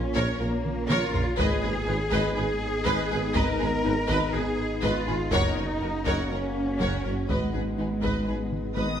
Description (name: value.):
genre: cinematic, hybrid orchestral and electronic film score.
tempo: 122 BPM.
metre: 4/4.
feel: straight.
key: G# dorian.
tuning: A4 = 443 Hz.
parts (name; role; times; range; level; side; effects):
ethereal airy pad; sustained chords; 0.0-9.0 s; A#3 to F#5; -36 LUFS; right 1 dB; ensemble chorus, built-in reverb.
mellow French horn section; sustained chords; 0.0-9.0 s; A#3 to D#4; -35 LUFS; left 4 dB; none.
thumb-piano-like synth pluck; arpeggios; 0.0-8.9 s; F#3 to E#4; -37 LUFS; left 3 dB; none.
sub bass with octave; bass; 0.0-9.0 s; F#1 to A#1; -35 LUFS; equal; none.
warm symphonic cello section; bass; 0.0-9.0 s; D#3 to A#4; -30 LUFS; right 1 dB; none.
warm symphonic violin section; melody; 0.2-9.0 s; G#4 to D#6; -38 LUFS; left 4 dB; none.
warm symphonic violin section; second line; 0.2-9.0 s; D#4 to C#5; -33 LUFS; left 2 dB; none.
warm symphonic viola section; accompaniment; 0.2-9.0 s; A#4 to B4; -33 LUFS; right 2 dB; none.
mellow tuba; bass; 0.2-8.9 s; F#1 to A#1; -34 LUFS; right 3 dB; none.
rich symphonic double bass section; bass; 0.2-8.8 s; F#1 to A#1; -34 LUFS; right 2 dB; none.
taiko ensemble; drums; 0.2-9.0 s; none; -34 LUFS; equal; none.
room: wet recital hall reverb, RT60 1.8 s.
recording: none.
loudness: -24 LUFS.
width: side -9 dB against mid.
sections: 0.0-9.0 A section.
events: drum fill 0.7-1.4, 8.5-9.0.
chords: 0.0 A#m; 1.4 G#m; 5.3 F#; 7.3 G#m.